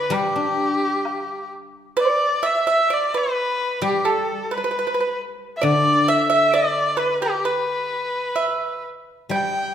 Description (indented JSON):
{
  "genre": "chinese traditional, Chinese chamber ensemble",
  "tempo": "65 BPM",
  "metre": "2/4",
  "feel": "rubato",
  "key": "G gong mode",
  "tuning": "A4 = 439 Hz",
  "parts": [
    { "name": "rich erhu", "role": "melody", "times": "0.0-9.7 s", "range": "G4 to G5", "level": "-22 LUFS", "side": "equal", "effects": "none" },
    { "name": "pipa", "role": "second line", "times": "0.0-9.7 s", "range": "G4 to G5", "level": "-22 LUFS", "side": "right 3 dB", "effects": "none" },
    { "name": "guzheng", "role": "accompaniment", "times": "0.0-9.7 s", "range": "D3 to D4", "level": "-25 LUFS", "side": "left 4 dB", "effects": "none" },
    { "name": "woodblock", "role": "percussion", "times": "0.1-1.3 s", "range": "none", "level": "-36 LUFS", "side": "left 3 dB", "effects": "none" }
  ],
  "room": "wet recital hall reverb, RT60 1.7 s",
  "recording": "minimal, uncompressed stereo recording",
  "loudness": "-18 LUFS",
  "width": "side -9 dB against mid",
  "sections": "0.0-2.0 A section; 2.0-9.7 B section",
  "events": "none",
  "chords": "none",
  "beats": "| 0.11 1.04 | 1.98 2.90 | 3.82 4.73 | 5.64 6.54 | 7.44 8.37 | 9.31"
}